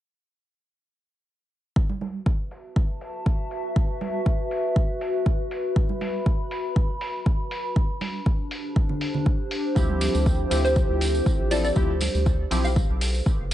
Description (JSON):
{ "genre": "deep house", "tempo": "120 BPM", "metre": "4/4", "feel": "swing 53% on 16ths", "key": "unclear", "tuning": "A4 = 440 Hz", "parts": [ { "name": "electronic kick drum", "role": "drums", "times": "1.8-13.4 s", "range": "none", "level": "-22 LUFS", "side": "equal", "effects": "studio reverb" }, { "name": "warbly tape-like pad", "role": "texture", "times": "3.0-13.5 s", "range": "D4 to B5", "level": "-29 LUFS", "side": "left 1 dB", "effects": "chorus, built-in reverb, sidechain pumping" }, { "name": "congas", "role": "percussion", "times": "1.9-12.1 s", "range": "none", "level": "-32 LUFS", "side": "right 5 dB", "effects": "overdrive, studio reverb" }, { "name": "electronic hi-hat", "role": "drums", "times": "2.0-13.5 s", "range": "none", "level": "-35 LUFS", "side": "left 1 dB", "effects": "low-pass filter on hats, studio reverb" }, { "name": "warm analog keys", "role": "stabs", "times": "9.8-12.7 s", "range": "F3 to A4", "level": "-29 LUFS", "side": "equal", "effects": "chorus, phaser, sidechain pumping, dub echo" }, { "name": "round analog bass", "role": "bass", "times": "9.8-13.5 s", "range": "F#1 to D2", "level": "-25 LUFS", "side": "equal", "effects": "sidechain pumping" }, { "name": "tambourine", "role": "percussion", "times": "9.8-13.5 s", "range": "none", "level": "-35 LUFS", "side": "right 3 dB", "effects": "none" }, { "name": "hollow square pluck", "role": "melody", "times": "10.6-12.8 s", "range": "C5 to F5", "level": "-29 LUFS", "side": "right 1 dB", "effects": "lush chorus, dub echo" } ], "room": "little or no reverb", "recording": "nothing above 10.8 kHz", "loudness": "-22 LUFS", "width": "side -13 dB against mid", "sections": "1.8-13.5 A section", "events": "filter sweep on drum 1.8-13.5", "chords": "1.8 F#m7; 7.8 Dm11; 12.8 Bm11", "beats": "| 1.76 2.26 2.76 3.26 | 3.76 4.26 4.76 5.26 | 5.76 6.26 6.76 7.26 | 7.76 8.26 8.76 9.26 | 9.76 10.26 10.76 11.26 | 11.76 12.26 12.76 13.26" }